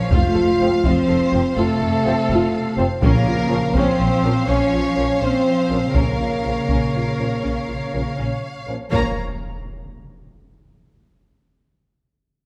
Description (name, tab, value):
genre	cinematic, epic orchestral film score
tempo	82 BPM (dotted quarters)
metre	12/8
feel	straight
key	Bb harmonic minor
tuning	A4 = 441 Hz
part	warm symphonic violin section	melody	0.0-9.2 s	F5	-34 LUFS	equal	none
part	warm symphonic violin section	second line	0.0-9.2 s	A4 to Bb5	-29 LUFS	equal	none
part	rich symphonic cello section	bass	0.0-9.2 s	C3 to Bb3	-28 LUFS	equal	none
part	dark symphonic viola section	accompaniment	0.1-9.2 s	Db4 to Db5	-30 LUFS	equal	none
part	mellow French horn section	sustained chords	0.1-9.1 s	A3 to F4	-24 LUFS	equal	none
part	rich symphonic double bass section	bass	0.1-9.2 s	F1 to Bb1	-27 LUFS	equal	none
part	taiko ensemble	drums	0.1-9.9 s	none	-25 LUFS	equal	none
part	timpani	percussion	0.1-9.2 s	F2 to Bb2	-28 LUFS	equal	none
part	mellow trombone section	sustained chords	0.6-9.1 s	F3 to Db4	-32 LUFS	equal	none
part	impact	sound effects	8.9-11.8 s	none	-32 LUFS	equal	none
room	wet recital hall reverb, RT60 1.8 s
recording	none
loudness	-19 LUFS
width	mono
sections	0.0-8.9 A section; 8.9-11.8 B section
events	impact 8.9-11.8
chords	0.1 F; 3.0 Bbmadd9; 5.9 Bbm